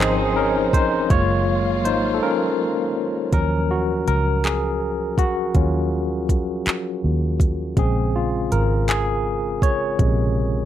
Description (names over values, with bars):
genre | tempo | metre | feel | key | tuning
slow six-eight R&B | 54 BPM (dotted quarters) | 6/8 | straight | Eb dorian | A4 = 440 Hz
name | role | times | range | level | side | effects
barky tine electric piano | accompaniment | 0.0-10.7 s | C3 to Db5 | -21 LUFS | left 1 dB | overdrive, medium stereo tremolo
warm studio string section | sustained chords | 0.0-3.3 s | Eb3 to C5 | -28 LUFS | left 1 dB | none
clear horn section | stabs | 0.0-0.7 s | F3 to Ab4 | -27 LUFS | right 5 dB | none
vintage muted fingered electric bass | bass | 0.0-10.7 s | Gb1 to Eb2 | -23 LUFS | right 1 dB | none
smooth R&B drum kit | drums | 0.0-10.2 s | handclaps, hi-hat, kick drum | -20 LUFS | right 1 dB | none
room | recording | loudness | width
light reverb | none | -18 LUFS | side -11 dB against mid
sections
0.0-3.3 A section; 3.3-10.7 B section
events
tine electric piano solo 0.0-3.3, 3.3-10.7; break 2.2-3.3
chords
0.0 Dbmaj9; 1.1 Gbmaj9; 3.3 Ebm9; 7.8 Bbm9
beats
| 1.10 2.21 | 3.33 4.44 | 5.55 6.66 | 7.77 8.88 | 9.99